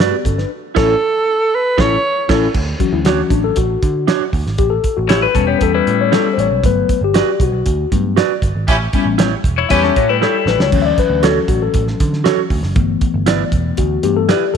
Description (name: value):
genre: uptempo 1960s-style soul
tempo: 118 BPM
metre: 4/4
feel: straight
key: D major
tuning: A4 = 444 Hz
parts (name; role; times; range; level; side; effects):
- mellow tine electric piano; accompaniment; 0.0-14.6 s; E3 to E5; -17 LUFS; left 10 dB; slow stereo tremolo
- electric guitar through a small old amp; stabs; 0.0-14.4 s; D4 to D5; -21 LUFS; right 14 dB; none
- vintage muted picked electric bass; bass; 0.0-14.6 s; E1 to D3; -20 LUFS; right 2 dB; none
- cloth-damped thuddy drum kit; drums; 0.0-14.6 s; crash cymbal, hi-hat, kick drum, snare drum; -18 LUFS; right 2 dB; none
- warm alto saxophone; melody; 0.8-2.3 s; A4 to C#5; -15 LUFS; right 2 dB; none
- semi-hollow electric guitar; riff; 5.1-6.5, 9.6-10.7 s; G3 to C#5; -19 LUFS; left 10 dB; none
- warm horn section; second line; 8.7-10.1 s; C#4 to G4; -20 LUFS; right 1 dB; slapback echo
room: light reverb, studio ambience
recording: 1960s-style stereo with parts hard left and right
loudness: -13 LUFS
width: side -7 dB against mid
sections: 0.0-2.5 A section; 2.5-14.6 B section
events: band accent 0.5-2.5, 8.7-10.7; tine electric piano solo 2.5-14.6; drum fill 10.2-10.7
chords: 0.0 Gmaj7; 0.5 A; 2.5 Dmaj7; 4.6 A7; 6.6 Gmaj7; 8.7 A7; 10.7 Dmaj7; 12.8 G6